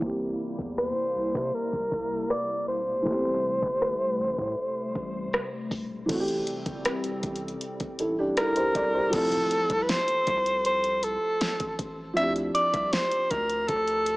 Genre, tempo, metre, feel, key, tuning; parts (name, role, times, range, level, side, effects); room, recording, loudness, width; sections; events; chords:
contemporary R&B; 79 BPM; 4/4; straight; A4 = 440 Hz
felt-muted upright piano; accompaniment; 0.0-14.2 s; E3 to D5; -31 LUFS; equal
hollow soft pad; sustained chords; 0.0-9.1 s; C3 to E4; -36 LUFS; left 1 dB; ensemble chorus, sidechain pumping
round analog bass; bass; 0.0-14.2 s; E1 to C3; -40 LUFS; equal
smooth R&B drum kit; drums; 0.0-14.2 s; crash cymbal, hi-hat, kick drum, rim click, snare drum; -31 LUFS; equal
breathy alto saxophone; melody; 0.8-14.2 s; A4 to E5; -26 LUFS; equal
impact; sound effects; 9.1-12.2 s; -44 LUFS; equal
light reverb; low-pass filter, small speaker sound; -25 LUFS; side -21 dB against mid
0.0-6.1 A section; 6.1-9.1 B section; 9.1-14.2 C section
filter sweep 0.0-6.1; impact 9.1-12.2
0.0 C7; 3.1 Am7; 9.1 Fmaj7; 12.2 Dm11